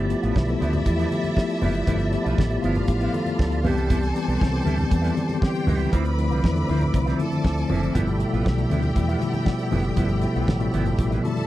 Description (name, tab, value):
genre	disco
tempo	118 BPM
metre	4/4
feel	straight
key	unclear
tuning	A4 = 440 Hz
part	clear studio string section	second line	0.0-11.5 s	E4 to B5	-32 LUFS	equal	none
part	bell-like tine electric piano	accompaniment	0.0-11.5 s	B2 to A4	-25 LUFS	left 2 dB	medium stereo tremolo
part	electric guitar with an envelope filter	accompaniment	0.0-11.4 s	F3 to G4	-32 LUFS	right 6 dB	none
part	tonewheel organ	sustained chords	0.0-11.5 s	F3 to D6	-33 LUFS	right 1 dB	overdrive, chorus vibrato, slow rotary speaker
part	fingered electric bass	bass	0.0-11.2 s	F#1 to E2	-24 LUFS	equal	none
part	damped 70s drum kit	drums	0.1-11.5 s	hi-hat, kick drum, snare drum	-23 LUFS	right 1 dB	none
part	congas	percussion	0.1-11.5 s	none	-30 LUFS	left 2 dB	none
room	light reverb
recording	dry, close 1970s-style studio recording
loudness	-20 LUFS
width	side -15 dB against mid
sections	0.0-11.5 A section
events	none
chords	0.0 G13; 3.6 Cmaj7; 5.9 Dm9; 7.9 G13